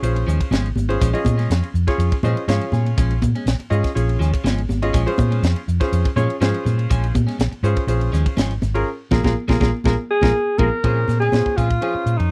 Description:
electric jazz fusion; 122 BPM; 4/4; straight; Bb minor; A4 = 436 Hz
bright concert grand piano; accompaniment; 0.0-12.3 s; Db4 to Ab5; -27 LUFS; equal
hollow-body short-scale fingered electric bass; bass; 0.0-12.3 s; Ab1 to Bb2; -22 LUFS; equal
tight funk drum kit; drums; 0.0-12.3 s; hi-hat, kick drum, ride cymbal, snare drum; -25 LUFS; equal
congas; percussion; 0.0-12.1 s; -29 LUFS; equal
clean electric guitar; stabs; 0.2-12.2 s; F3 to Ab4; -31 LUFS; equal; lush chorus
breathy alto saxophone; melody; 10.1-12.3 s; Eb4 to Bb4; -22 LUFS; equal; slapback echo
little or no reverb; dry, close 1970s-style studio recording; -19 LUFS; mono
0.0-10.8 A section; 10.8-12.3 B section
grand piano fill 2.0-3.0; band accent 8.9-10.8; drum fill 10.3-10.8
0.0 Bbm7; 10.8 Bbm9
0.03 0.52 | 1.01 1.50 2.00 2.49 | 2.98 3.47 3.96 4.45 | 4.94 5.43 5.92 6.41 | 6.90 7.39 7.89 8.38 | 8.87 9.36 9.85 10.34 | 10.84 11.33 11.82

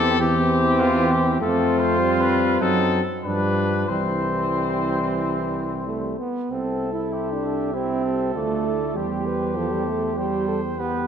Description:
classical, brass quintet; 90-100 BPM; 4/4; rubato; C major; A4 = 438 Hz
warm trumpet; melody; 0.0-11.1 s; F4 to G5; -27 LUFS; left 6 dB
warm trumpet; second line; 0.0-11.1 s; C4 to C5; -29 LUFS; right 4 dB
clear French horn; accompaniment; 0.0-11.1 s; G3 to B4; -26 LUFS; left 2 dB
clear trombone; accompaniment; 0.0-11.1 s; E3 to E4; -26 LUFS; right 2 dB
mellow tuba; bass; 0.0-11.1 s; C2 to G2; -26 LUFS; right 2 dB
wet scoring stage reverb, RT60 1.6 s; -20 LUFS; side -8 dB against mid
0.0-6.5 A section; 6.5-11.1 A section
0.0 C/E; 1.4 F; 2.6 F#dim7; 3.2 G7; 3.9 C; 9.0 C/E
0.20 0.80 | 1.40 2.00 2.62 3.25 | 3.90 4.56 5.21 5.86 | 6.51 7.13 7.74 8.36 | 8.96 9.57 10.18 10.78

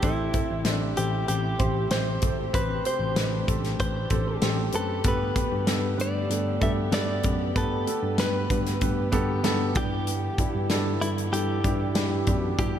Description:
piano-driven pop; 96 BPM; 4/4; straight; A4 = 440 Hz
direct-recorded clean electric guitar; melody; 0.0-12.8 s; E4 to E5; -31 LUFS; left 1 dB; warbly pitch drift, slapback echo
clear grand piano; accompaniment; 0.0-12.8 s; G2 to C5; -30 LUFS; right 2 dB; slapback echo
warm studio string section; sustained chords; 0.0-12.8 s; C3 to G4; -36 LUFS; left 1 dB
barky tine electric piano; bass; 0.0-12.8 s; G#1 to G2; -28 LUFS; equal; medium stereo tremolo
modern studio drum kit; drums; 0.0-12.7 s; hi-hat, kick drum, snare drum; -28 LUFS; equal
moderate lush hall reverb, RT60 2.9 s; big arena sound; -23 LUFS; side -10 dB against mid
0.0-12.8 A section
0.0 Am7; 5.1 Gadd9; 9.8 Em7
| 0.03 0.66 1.29 1.91 | 2.54 3.17 3.80 4.42 | 5.05 5.68 6.30 6.93 | 7.56 8.19 8.82 9.44 | 10.07 10.70 11.33 11.96 | 12.58

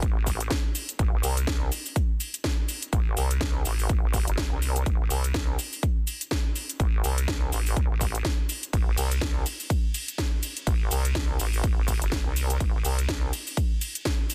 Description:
bass house; 124 BPM; 4/4; swing 57% on 16ths; A4 = 440 Hz
vowel-sweep wobble bass; bass; 0.0-13.3 s; G1 to C2; -29 LUFS; equal; chorus, tube saturation, sidechain pumping
electronic kick drum; drums; 0.0-14.2 s; -28 LUFS; equal
house drum kit; drums; 0.0-14.3 s; cabasa, hi-hat, ride cymbal, snare drum; -34 LUFS; equal; overdrive
little or no reverb; dense, heavily limited modern master; -27 LUFS; mono
0.0-14.3 A section
0.02 0.51 | 0.99 1.48 1.96 2.44 | 2.93 3.41 3.90 4.38 | 4.86 5.35 5.83 6.32 | 6.80 7.28 7.77 8.25 | 8.73 9.22 9.70 10.19 | 10.67 11.15 11.64 12.12 | 12.61 13.09 13.57 14.06

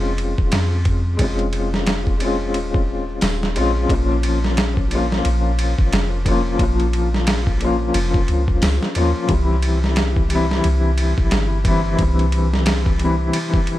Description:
trip hop; 89 BPM; 4/4; swing 60% on 16ths; A4 = 440 Hz
felt-muted upright piano; accompaniment; 0.0-13.8 s; E3 to F4; -21 LUFS; left 2 dB; tremolo, tape echo
soft 808-style bass; bass; 0.0-13.3 s; Eb1 to F2; -20 LUFS; equal
dusty soul sampler-style drum kit; drums; 0.2-13.8 s; hi-hat, kick drum, ride cymbal, snare drum; -21 LUFS; equal; overdrive
little or no reverb; dark, warm production; -16 LUFS; side -15 dB against mid
0.0-3.9 A section; 3.9-13.8 B section
0.0 Bbm9 (rootless); 3.9 Bbm; 9.3 C
0.53 | 1.20 1.87 2.55 3.22 | 3.90 4.57 5.24 5.92 | 6.59 7.27 7.94 8.62 | 9.29 9.96 10.64 11.31 | 11.99 12.66 13.33

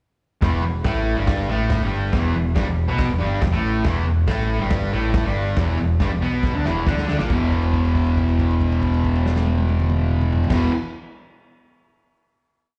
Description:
garage rock duo or trio; 139 BPM; 4/4; straight; A4 = 440 Hz
fuzz guitar; riff; 0.4-10.7 s; E2 to D4; -24 LUFS; equal; distortion, slapback echo
growling picked electric bass; bass; 0.4-10.7 s; E1 to D2; -25 LUFS; equal; overdrive
vintage drum kit; drums; 0.4-10.6 s; crash cymbal, hi-hat, kick drum, snare drum, toms; -26 LUFS; equal
small room reverb; live gig heard through the venue's PA, club reverb; -21 LUFS; mono
0.4-7.3 riff; 7.3-10.8 final chord
drum fill 6.4-7.3; held note 7.3-10.5
0.4 E5
| 0.42 0.85 1.28 1.70 | 2.13 2.56 2.99 3.42 | 3.85 4.28 4.71 5.14 | 5.57 6.00 6.43 6.87 | 7.30 7.73 8.16 8.60 | 9.03 9.46 9.90 10.33

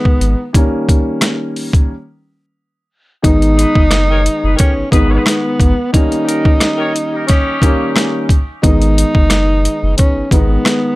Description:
hip hop, boom-bap hip-hop; 89 BPM; 4/4; swing 56% on 16ths; G# harmonic minor; A4 = 440 Hz
breathy tenor saxophone; melody; 0.0-11.0 s; A#3 to D#4; -17 LUFS; equal; high-pass filter, low-pass filter, tape echo
dark concert grand piano; accompaniment; 0.0-11.0 s; D#3 to D#4; -18 LUFS; equal; cassette tape, high-pass filter, low-pass filter
boom bap sampler-style drum kit; drums; 0.1-10.8 s; hi-hat, kick drum, rim click, snare drum; -12 LUFS; equal
warm sub bass; bass; 0.2-10.6 s; F#1 to G#1; -14 LUFS; equal
warm horn section; stabs; 3.6-8.1 s; C#4 to C#5; -22 LUFS; left 2 dB; high-pass filter, low-pass filter, tape echo
little or no reverb; -11 LUFS; side -20 dB against mid
0.0-3.2 A section; 3.2-11.0 B section
break 0.5-3.2
0.0 G#m; 0.5 D#7; 3.2 G#m; 5.9 D#7; 8.6 G#m
| 0.54 1.22 1.89 2.56 | 3.24 3.91 4.59 5.26 | 5.93 6.61 7.28 7.96 | 8.63 9.31 9.98 10.65

